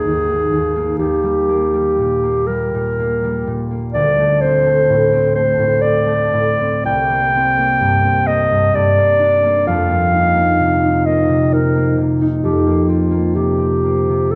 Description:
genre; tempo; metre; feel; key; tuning
classical, impressionist duo for clarinet and harp; 55-67 BPM; 3/4; rubato; unclear; A4 = 440 Hz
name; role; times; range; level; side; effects
mellow clarinet; melody; 0.0-14.4 s; F4 to G5; -18 LUFS; equal; none
concert harp; accompaniment; 0.0-14.4 s; Ab1 to Eb4; -19 LUFS; equal; none
room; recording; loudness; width
wet scoring stage reverb, RT60 1.6 s; none; -16 LUFS; mono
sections
0.0-14.4 A section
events
none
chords
0.0 Absus2; 1.0 Eb; 3.9 D5; 6.9 C5; 8.8 Gm; 9.7 F7sus4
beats
0.05 | 0.99 1.98 2.98 | 3.94 4.90 5.82 | 6.86 7.81 8.75 | 9.68 10.61 11.53 | 12.44 13.36 14.33

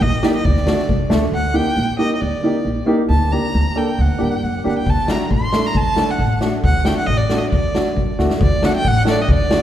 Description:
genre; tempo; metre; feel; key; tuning
klezmer; 136 BPM; 2/4; straight; D phrygian dominant; A4 = 440 Hz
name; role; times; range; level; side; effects
warm violin; melody; 0.0-9.6 s; D5 to C6; -22 LUFS; right 1 dB; none
upright bass; bass; 0.0-9.6 s; A1 to G2; -20 LUFS; equal; none
street-band drum kit; drums; 0.0-1.2, 4.9-9.6 s; kick drum, snare drum; -20 LUFS; left 1 dB; none
dark upright piano; accompaniment; 0.2-9.6 s; A3 to A4; -20 LUFS; equal; none
room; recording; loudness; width
moderate concert hall reverb, RT60 2.0 s; recorded in a church or concert hall; -15 LUFS; side -11 dB against mid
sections
0.0-1.3 A section; 1.3-8.4 B section; 8.4-9.6 A section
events
drum fill 8.2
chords
0.5 D; 1.3 Eb; 3.1 Gm/D; 4.9 D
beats
0.02 | 0.46 0.90 | 1.34 1.78 | 2.22 2.66 | 3.10 3.54 | 3.98 4.43 | 4.87 5.31 | 5.75 6.20 | 6.64 7.08 | 7.53 7.97 | 8.41 8.85 | 9.29

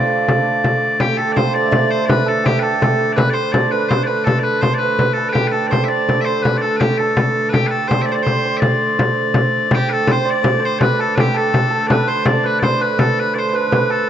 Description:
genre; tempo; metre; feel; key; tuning
medieval dance; 110 BPM (dotted quarters); 6/8; straight; unclear; A4 = 438 Hz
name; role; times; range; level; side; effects
loud bright bagpipes; melody; 0.0-14.1 s; G4 to E5; -19 LUFS; left 3 dB; none
hammered dulcimer; second line; 0.0-14.1 s; F4 to E5; -21 LUFS; right 6 dB; none
dark hurdy-gurdy; drone; 0.0-14.1 s; D3 to A3; -23 LUFS; right 2 dB; none
frame drum; percussion; 0.3-13.9 s; none; -18 LUFS; left 1 dB; none
room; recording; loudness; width
light reverb, small room ambience; rough home demo mix, nothing above 7.9 kHz; -14 LUFS; side -10 dB against mid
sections
1.0-9.7 A section; 9.7-14.1 A section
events
none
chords
none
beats
0.45 | 0.99 1.54 | 2.08 2.63 | 3.17 3.72 | 4.26 4.81 | 5.36 5.90 | 6.45 6.99 | 7.53 8.08 | 8.62 9.17 | 9.71 10.26 | 10.80 11.35 | 11.89 12.44 | 12.98 13.53 | 14.07

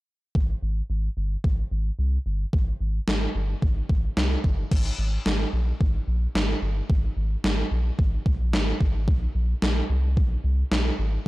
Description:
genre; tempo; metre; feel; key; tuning
synth-pop; 110 BPM; 4/4; straight; Ab major; A4 = 444 Hz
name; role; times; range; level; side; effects
round analog bass; bass; 0.4-11.2 s; G1 to C2; -25 LUFS; equal; none
gated 80s digital drum machine; drums; 0.4-10.8 s; crash cymbal, kick drum, snare drum; -24 LUFS; equal; gated reverb, gated reverb snare, overdrive
room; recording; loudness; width
little or no reverb; blown-out, overdriven recording, overdrive; -22 LUFS; side -19 dB against mid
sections
0.4-4.7 A section; 4.7-11.3 B section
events
none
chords
none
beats
| 0.35 0.90 1.44 1.99 | 2.53 3.08 3.62 4.17 | 4.71 5.26 5.80 6.35 | 6.90 7.44 7.99 8.53 | 9.08 9.62 10.17 10.71

